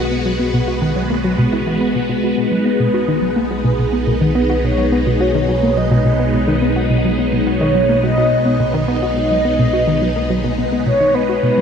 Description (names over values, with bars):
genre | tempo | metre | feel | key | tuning
ambient, sequencer-driven space music | 106 BPM | 4/4 | straight | B major | A4 = 440 Hz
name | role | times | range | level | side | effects
phased string machine | sustained chords | 0.0-11.6 s | G#3 to F#4 | -19 LUFS | equal | ensemble chorus, phaser
fat analog bass | bass | 0.0-11.6 s | B1 | -22 LUFS | equal | none
tight sequenced synth | riff | 0.1-11.6 s | B2 to F#4 | -18 LUFS | equal | chorus, ping-pong delay
mellow horn-like synth lead | melody | 2.4-11.6 s | G#4 to D#5 | -19 LUFS | equal | wide subtle chorus, ping-pong delay
room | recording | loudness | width
wet huge ambient reverb, RT60 8.3 s | cassette tape | -14 LUFS | side -7 dB against mid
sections
0.0-11.6 A section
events
fade-in on analog synth bass 0.0-11.6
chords
0.0 B6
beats
| 0.11 0.68 1.24 1.81 | 2.37 2.94 3.51 4.07 | 4.64 5.20 5.77 6.34 | 6.90 7.47 8.03 8.60 | 9.17 9.73 10.30 10.86 | 11.43